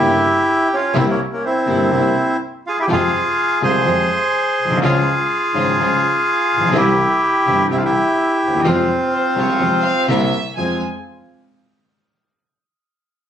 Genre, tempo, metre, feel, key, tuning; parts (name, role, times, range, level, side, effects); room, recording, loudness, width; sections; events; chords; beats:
tango; 125 BPM; 4/4; rubato; F harmonic minor; A4 = 440 Hz
bandoneon; melody; 0.0-10.1 s; Bb3 to C5; -16 LUFS; right 1 dB
clear concert grand piano; accompaniment; 0.0-10.8 s; G1 to G4; -20 LUFS; left 2 dB
warm studio string section; stabs; 0.0-10.8 s; G3 to G4; -28 LUFS; right 3 dB
warm double bass; bass; 0.0-10.8 s; G1 to F2; -26 LUFS; right 1 dB
warm chamber violin section; second line; 9.1-10.8 s; C5 to Ab5; -23 LUFS; left 2 dB
moderate large studio reverb, RT60 0.9 s; recorded on a phone in the room, club reverb, compression; -14 LUFS; side -9 dB against mid
0.0-10.6 A section; 10.6-12.5 B section
0.0 Gdim; 0.9 C7; 2.9 Fm; 4.8 Db; 6.7 C; 8.6 Fm; 10.1 C7; 10.6 Fm
0.47 | 0.94 1.42 1.91 2.40 | 2.89 3.37 3.86 4.34 | 4.82 5.30 5.78 6.26 | 6.74 7.21 7.69 8.16 | 8.64 9.12 9.60 10.09 | 10.57